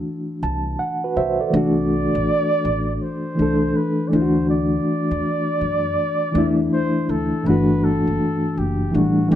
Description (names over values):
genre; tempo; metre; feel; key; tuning
lo-fi hip hop; 81 BPM; 4/4; swing 65% on 16ths; G major; A4 = 438 Hz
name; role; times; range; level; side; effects
mellow flugelhorn; melody; 0.0-9.4 s; F#4 to D5; -25 LUFS; right 1 dB; low-pass filter
reed electric piano; accompaniment; 0.0-9.4 s; G2 to A5; -19 LUFS; left 1 dB; fast tremolo, cassette tape, low-pass filter
upright bass; bass; 0.4-9.4 s; F#1 to F#2; -27 LUFS; equal; none
room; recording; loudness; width
wet small room reverb, RT60 0.5 s; rough home demo mix, nothing above 10.8 kHz; -18 LUFS; side -11 dB against mid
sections
0.0-7.5 A section; 7.5-9.4 B section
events
reed electric piano fill 0.0-1.5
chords
0.0 D9; 1.5 C6; 4.1 D; 7.5 G5